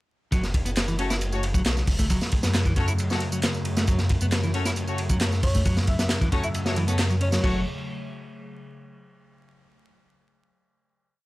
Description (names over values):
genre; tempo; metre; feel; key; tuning
breakbeat, breaks; 135 BPM; 4/4; straight; F# minor; A4 = 440 Hz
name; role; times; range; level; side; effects
warbly tape-like pad; sustained chords; 1.0-7.6 s; C#3 to A3; -35 LUFS; left 1 dB; chorus, built-in reverb, sidechain pumping
clean electric guitar; riff; 0.3-7.6 s; E3 to E4; -31 LUFS; equal; vintage 12-bit sampler grit, digital delay
phased detuned saw bass; bass; 0.3-7.6 s; F#1 to F#2; -26 LUFS; equal; phaser, tube saturation
crunchy breakbeat drum kit; drums; 0.3-7.5 s; crash cymbal, hi-hat, kick drum, ride cymbal, snare drum; -25 LUFS; equal; none
punchy analog drum machine; drums; 0.3-7.4 s; handclaps, ride cymbal, tambourine; -34 LUFS; right 1 dB; none
warm horn section; stabs; 1.0-7.6 s; A3 to C#5; -33 LUFS; left 3 dB; vintage 12-bit sampler grit, digital delay
airy dreamy lead; melody; 5.4-7.4 s; C#5 to E5; -34 LUFS; equal; chorus, old record sound, cassette tape, digital delay
room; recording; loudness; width
little or no reverb; vinyl crackle; -22 LUFS; side -19 dB against mid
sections
0.3-7.4 drop; 7.4-9.2 final chord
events
drop 0.3-7.4; band accent 7.0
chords
0.3 F#m